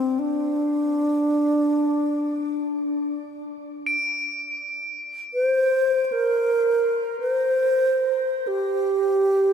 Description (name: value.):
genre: world meditative, free-time meditation music.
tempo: free time.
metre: none.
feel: none.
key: unclear.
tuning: A4 = 439 Hz.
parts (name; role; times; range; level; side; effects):
wooden-headed alto flute; melody; 0.0-9.5 s; C4 to C5; -20 LUFS; equal; shimmer reverb, tape echo.
crotales; texture; 3.9-9.5 s; D7; -28 LUFS; equal; shimmer reverb.
room: moderate huge ambient reverb, RT60 4.1 s.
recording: none.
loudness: -20 LUFS.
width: side -8 dB against mid.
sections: 0.0-9.5 A section.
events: none.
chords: none.